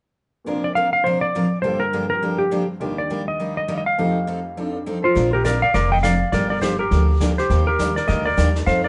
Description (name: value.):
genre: country, western swing.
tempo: 205 BPM.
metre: 4/4.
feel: swing 60% on 8ths.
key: Bb major.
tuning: A4 = 443 Hz.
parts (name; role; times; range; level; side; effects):
clear upright piano; accompaniment; 0.4-5.2 s; Eb2 to D5; -32 LUFS; equal; none.
picked steel-string acoustic guitar; accompaniment; 0.5-8.9 s; G2 to Bb4; -28 LUFS; equal; none.
clean lap steel guitar; melody; 0.6-8.9 s; F4 to G5; -23 LUFS; equal; none.
upright bass; bass; 5.2-8.9 s; F1 to F2; -22 LUFS; equal; none.
vintage brush drum kit; drums; 5.2-8.9 s; brushed snare drum, hi-hat, kick drum, snare drum; -33 LUFS; equal; none.
room: wet studio reverb, RT60 0.8 s.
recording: band playing live in one room, nothing above 10.6 kHz.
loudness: -20 LUFS.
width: mono.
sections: 0.5-5.2 A section; 5.2-8.9 B section.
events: none.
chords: 0.5 Bbadd9; 1.6 Gm7; 2.8 Ebmaj7; 4.0 F7; 5.2 Bbadd9; 6.3 Gm7; 7.5 Ebmaj7.